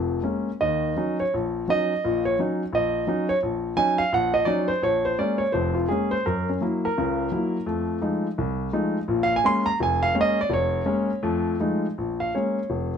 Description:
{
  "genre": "solo jazz",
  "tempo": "170 BPM",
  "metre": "4/4",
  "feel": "swing 63% on 8ths, rubato",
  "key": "Bb minor",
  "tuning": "A4 = 437 Hz",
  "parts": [
    { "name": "warm grand piano", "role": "solo", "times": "0.0-13.0 s", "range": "F1 to C6", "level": "-22 LUFS", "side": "equal", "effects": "none" }
  ],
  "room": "light reverb",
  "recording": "dark, warm production",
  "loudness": "-22 LUFS",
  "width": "side -7 dB against mid",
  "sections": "0.0-12.0 A section; 12.0-13.0 A section",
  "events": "grand piano solo 0.0-13.0",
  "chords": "0.0 Bbm7; 0.6 Ebm7; 4.8 Bbm7; 6.3 Gb7; 7.7 F7#9; 9.1 Bbm7; 11.2 F7#9; 12.0 Bbm7"
}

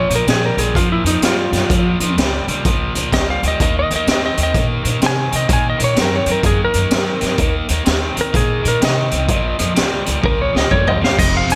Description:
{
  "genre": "electric blues shuffle",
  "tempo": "126 BPM",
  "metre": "4/4",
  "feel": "swing 64% on 8ths",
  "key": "Bb minor",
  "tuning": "A4 = 443 Hz",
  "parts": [
    { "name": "clean lap steel guitar", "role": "melody", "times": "0.0-11.6 s", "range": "Eb4 to Ab5", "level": "-22 LUFS", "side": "equal", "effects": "none" },
    { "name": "crunchy overdriven guitar", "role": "riff", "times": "0.0-11.6 s", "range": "F2 to C4", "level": "-24 LUFS", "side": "equal", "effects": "none" },
    { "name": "upright bass", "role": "bass", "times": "0.0-11.6 s", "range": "F1 to C3", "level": "-23 LUFS", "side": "equal", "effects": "none" },
    { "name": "raw garage drum kit", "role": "drums", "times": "0.1-11.6 s", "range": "crash cymbal, hi-hat, kick drum, snare drum, toms", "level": "-20 LUFS", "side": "equal", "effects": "none" }
  ],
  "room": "light reverb",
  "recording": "none",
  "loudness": "-16 LUFS",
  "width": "mono",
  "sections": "0.0-11.6 A section",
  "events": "electric slide guitar solo 0.0-11.6; drum fill 10.2-11.2",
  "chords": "0.0 Bbm; 3.6 Ebm; 9.3 Bbm"
}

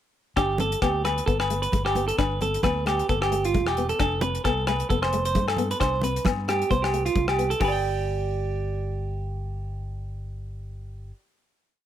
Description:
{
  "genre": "highlife guitar band",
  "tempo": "133 BPM",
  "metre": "4/4",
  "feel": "swing 55% on 16ths",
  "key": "G mixolydian",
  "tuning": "A4 = 439 Hz",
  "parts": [
    { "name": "nylon-string guitar", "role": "accompaniment", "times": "0.4-7.7 s", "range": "D3 to D4", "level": "-31 LUFS", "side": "left 6 dB", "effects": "none" },
    { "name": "clean electric guitar", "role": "arpeggios", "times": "0.4-11.2 s", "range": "F4 to G5", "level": "-26 LUFS", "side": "right 5 dB", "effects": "slapback echo" },
    { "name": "fingered electric bass", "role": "bass", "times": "0.4-11.1 s", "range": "E1 to G2", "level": "-30 LUFS", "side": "equal", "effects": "none" },
    { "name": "damped 70s drum kit", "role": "drums", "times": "0.4-7.7 s", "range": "hi-hat, kick drum, rim click", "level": "-29 LUFS", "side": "left 1 dB", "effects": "none" },
    { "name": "agogo bells", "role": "percussion", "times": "0.4-7.7 s", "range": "none", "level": "-31 LUFS", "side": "left 10 dB", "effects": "none" },
    { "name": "congas", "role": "percussion", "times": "0.4-7.8 s", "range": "none", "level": "-31 LUFS", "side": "right 4 dB", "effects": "none" }
  ],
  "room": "light reverb, studio reverb",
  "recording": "none",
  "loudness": "-22 LUFS",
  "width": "side -11 dB against mid",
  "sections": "0.4-7.6 groove; 7.6-11.2 final chord",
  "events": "none",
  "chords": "0.4 Gadd9; 4.0 F; 5.8 C5; 7.6 G5"
}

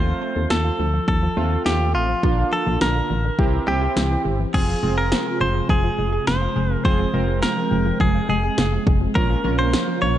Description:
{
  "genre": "synth-pop",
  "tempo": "104 BPM",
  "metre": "4/4",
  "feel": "straight",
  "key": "unclear",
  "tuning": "A4 = 445 Hz",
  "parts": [
    { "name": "direct-recorded clean electric guitar", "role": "melody", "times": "0.0-10.2 s", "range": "F4 to Db5", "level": "-24 LUFS", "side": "equal", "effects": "tape echo" },
    { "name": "warm analog keys", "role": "accompaniment", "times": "0.0-10.2 s", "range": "A3 to Bb4", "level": "-27 LUFS", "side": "right 3 dB", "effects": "chorus" },
    { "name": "solid FM bass", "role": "bass", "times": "0.0-10.2 s", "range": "F1 to Eb2", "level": "-22 LUFS", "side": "equal", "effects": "none" },
    { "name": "analog pluck", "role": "arpeggios", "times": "0.1-10.1 s", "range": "D3 to Bb4", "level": "-29 LUFS", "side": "left 1 dB", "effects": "chorus, phaser, tape echo" },
    { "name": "punchy analog drum machine", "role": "drums", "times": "0.5-9.9 s", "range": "crash cymbal, kick drum, snare drum", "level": "-23 LUFS", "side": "equal", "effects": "overdrive" },
    { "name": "soft string machine", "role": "sustained chords", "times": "4.5-10.2 s", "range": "C3 to G5", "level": "-26 LUFS", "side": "right 2 dB", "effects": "phaser, ensemble chorus" }
  ],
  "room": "light reverb, digital ambience",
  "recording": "dark, warm production, nothing above 10.3 kHz",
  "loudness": "-18 LUFS",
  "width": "side -12 dB against mid",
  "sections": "0.0-4.5 A section; 4.5-10.2 B section",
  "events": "none",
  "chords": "0.0 F; 2.2 Bb; 3.4 C7; 4.5 Fm; 9.2 Bbm"
}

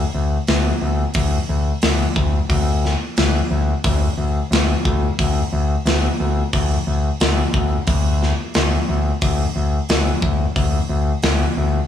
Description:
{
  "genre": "heavy metal",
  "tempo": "89 BPM",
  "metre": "4/4",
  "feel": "straight",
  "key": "unclear",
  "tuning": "A4 = 439 Hz",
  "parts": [
    { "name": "growling picked electric bass", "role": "bass", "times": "0.0-11.8 s", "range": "D2", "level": "-18 LUFS", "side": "left 1 dB", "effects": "overdrive" },
    { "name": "tight metal drum kit", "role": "drums", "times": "0.5-11.4 s", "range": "hi-hat, kick drum, snare drum", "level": "-21 LUFS", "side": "left 1 dB", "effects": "none" }
  ],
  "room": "little or no reverb",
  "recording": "band playing live in one room",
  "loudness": "-16 LUFS",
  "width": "side -9 dB against mid",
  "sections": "0.0-11.9 A section",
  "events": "none",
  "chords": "none"
}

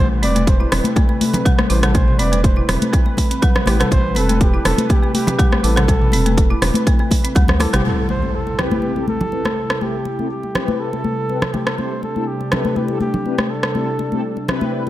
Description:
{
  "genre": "afro house",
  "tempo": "122 BPM",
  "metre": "4/4",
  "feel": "straight",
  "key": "A minor",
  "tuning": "A4 = 442 Hz",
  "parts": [
    { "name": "trumpet with bucket mute", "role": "melody", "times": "0.0-14.5 s", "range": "G4 to D5", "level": "-25 LUFS", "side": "right 1 dB", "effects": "tape echo" },
    { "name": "warm analog pad", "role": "sustained chords", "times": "0.0-14.9 s", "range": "C3 to B4", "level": "-26 LUFS", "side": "right 2 dB", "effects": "lush chorus, sidechain pumping" },
    { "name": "folk marimba with medium hard mallets", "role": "arpeggios", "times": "0.0-7.8 s", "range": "G3 to E4", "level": "-23 LUFS", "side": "left 2 dB", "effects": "vintage 12-bit sampler grit, sidechain pumping, tape echo" },
    { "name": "round analog bass", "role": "bass", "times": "0.0-7.8 s", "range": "E1 to D2", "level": "-18 LUFS", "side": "equal", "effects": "tube saturation, sidechain pumping" },
    { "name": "house drum kit", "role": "drums", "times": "0.2-14.6 s", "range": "hi-hat, rim click, toms", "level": "-22 LUFS", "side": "right 1 dB", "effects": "overdrive" },
    { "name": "congas", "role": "percussion", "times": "0.2-14.9 s", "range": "none", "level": "-23 LUFS", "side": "left 2 dB", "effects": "none" },
    { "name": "electronic kick drum", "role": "drums", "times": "0.5-7.5 s", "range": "none", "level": "-15 LUFS", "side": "equal", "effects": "overdrive" },
    { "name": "mellow synth brass", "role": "stabs", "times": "7.8-14.9 s", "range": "C4 to B4", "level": "-26 LUFS", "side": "left 3 dB", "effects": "chorus, phaser, sidechain pumping, tape echo" },
    { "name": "impact", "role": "sound effects", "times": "7.9-9.8 s", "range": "none", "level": "-26 LUFS", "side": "equal", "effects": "none" }
  ],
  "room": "light reverb, digital ambience",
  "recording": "none",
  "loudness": "-15 LUFS",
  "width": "side -14 dB against mid",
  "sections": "0.0-7.8 A section; 7.8-14.9 B section",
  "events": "band accent 7.7; impact 7.8-9.8",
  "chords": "0.0 Am7"
}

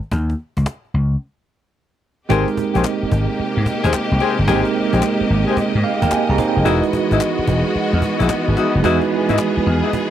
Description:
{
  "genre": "R&B, new jack swing",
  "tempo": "110 BPM",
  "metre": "4/4",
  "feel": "swing 66% on 16ths",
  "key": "Ab major",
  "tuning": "A4 = 440 Hz",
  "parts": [
    { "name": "cajon", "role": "drums", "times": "0.0-10.1 s", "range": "none", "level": "-26 LUFS", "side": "left 1 dB", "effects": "none" },
    { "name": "vintage slap bass", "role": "bass", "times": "0.1-9.8 s", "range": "E1 to Ab2", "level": "-18 LUFS", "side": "left 1 dB", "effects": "none" },
    { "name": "bell-like tine electric piano", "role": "accompaniment", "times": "2.3-10.1 s", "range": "Ab3 to Bb5", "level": "-20 LUFS", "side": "right 7 dB", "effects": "fast stereo tremolo" },
    { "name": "clear studio string section", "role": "sustained chords", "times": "2.3-10.1 s", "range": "C3 to Eb5", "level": "-22 LUFS", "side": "left 2 dB", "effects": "none" },
    { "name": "mellow horn section", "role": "stabs", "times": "2.3-9.9 s", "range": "C4 to D#5", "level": "-21 LUFS", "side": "left 7 dB", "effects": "tube saturation, slapback echo" },
    { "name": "group handclap", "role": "percussion", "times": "2.8-9.6 s", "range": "none", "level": "-31 LUFS", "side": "left 11 dB", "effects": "none" }
  ],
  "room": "small room ambience",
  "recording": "dry, close 1970s-style studio recording",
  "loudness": "-15 LUFS",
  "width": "side -11 dB against mid",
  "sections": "0.0-2.3 A section; 2.3-10.1 B section",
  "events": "break 1.2-2.3; tine electric piano fill 5.6-6.7",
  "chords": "0.1 Dbsus2; 2.3 Abmaj9; 6.7 Emaj9"
}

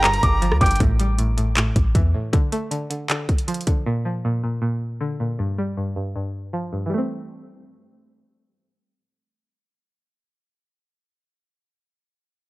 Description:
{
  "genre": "hip hop, trap",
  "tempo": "157 BPM",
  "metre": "4/4",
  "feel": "half-time",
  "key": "A phrygian",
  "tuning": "A4 = 440 Hz",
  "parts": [
    { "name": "dark baby grand piano", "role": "melody", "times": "0.0-0.8 s", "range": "Bb5 to D6", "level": "-24 LUFS", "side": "right 1 dB", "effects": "low-pass filter, analog delay" },
    { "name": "breathy bright jazz flute", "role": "second line", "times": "0.0-0.8 s", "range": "G5 to Bb5", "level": "-27 LUFS", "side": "right 1 dB", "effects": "analog delay" },
    { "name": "string-like resonator pluck", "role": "accompaniment", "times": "0.0-10.5 s", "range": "G2 to C4", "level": "-24 LUFS", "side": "equal", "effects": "chorus, phaser, low-pass filter" },
    { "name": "warm analog pad", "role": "sustained chords", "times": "0.0-0.8 s", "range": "D3 to Bb4", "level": "-37 LUFS", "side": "equal", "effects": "none" },
    { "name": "clean 808-style bass", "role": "bass", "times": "0.0-2.1 s", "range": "G1 to E2", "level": "-20 LUFS", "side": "equal", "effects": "none" },
    { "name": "trap drum kit", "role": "drums", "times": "0.0-3.8 s", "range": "handclaps, hi-hat, kick drum, rim click", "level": "-21 LUFS", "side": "equal", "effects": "none" }
  ],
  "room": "little or no reverb",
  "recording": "dry, gritty hardware recording, cassette tape",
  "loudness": "-20 LUFS",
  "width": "side -20 dB against mid",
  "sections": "0.8-6.9 A section; 6.9-10.0 B section",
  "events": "filter sweep on synth pluck 0.8-6.9",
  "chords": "0.0 Gm7; 0.8 A5; 2.3 Dm; 3.9 Bb; 5.4 Fsus2/G; 6.9 Am7"
}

